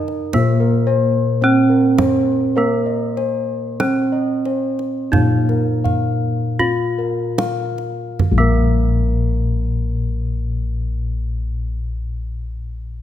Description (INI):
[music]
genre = Javanese gamelan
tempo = 36-59 BPM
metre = 4/4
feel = straight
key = unclear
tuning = A4 = 439 Hz
[part]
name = gamelan-type bronze metallophone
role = melody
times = 0.0-11.8 s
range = Bb3 to F4+20c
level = -20 LUFS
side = right 3 dB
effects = none
[part]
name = gamelan-type bossed gongs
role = arpeggios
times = 0.0-11.8 s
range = Bb4 to F5+20c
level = -24 LUFS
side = left 5 dB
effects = none
[part]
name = kendang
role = percussion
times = 0.1-9.0 s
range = none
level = -23 LUFS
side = right 3 dB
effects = none
[part]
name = gamelan-type bossed gongs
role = bass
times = 0.4-11.7 s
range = Bb1 to Bb4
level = -20 LUFS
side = left 2 dB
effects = none
[sound]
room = light reverb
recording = none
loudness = -16 LUFS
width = side -11 dB against mid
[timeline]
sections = 0.0-8.2 A section; 8.2-13.0 B section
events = slowing down 0.0-8.2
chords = none